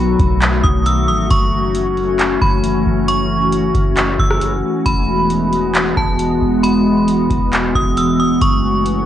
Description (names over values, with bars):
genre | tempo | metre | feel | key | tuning
hip hop, atmospheric cloud-rap | 135 BPM | 4/4 | half-time | F# dorian | A4 = 441 Hz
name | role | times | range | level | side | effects
metallic FM bell | melody | 0.0-9.1 s | A5 to E6 | -20 LUFS | right 1 dB | chorus, cassette tape, tape echo
glassy FM pad | sustained chords | 0.0-9.1 s | D#3 to F#4 | -16 LUFS | left 1 dB | ensemble chorus, built-in reverb, sidechain pumping, cassette tape
soft 808-style bass | bass | 0.0-9.1 s | D#1 to B1 | -21 LUFS | equal | none
booming analog drum machine | drums | 0.2-9.0 s | handclaps, hi-hat, kick drum, rim click | -17 LUFS | equal | vintage 12-bit sampler grit, cassette tape
room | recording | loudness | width
light reverb | home recording on cassette | -13 LUFS | side -11 dB against mid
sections
0.0-9.1 A section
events
none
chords
0.0 B; 1.3 F#m7; 4.9 Eadd9; 8.4 F#m7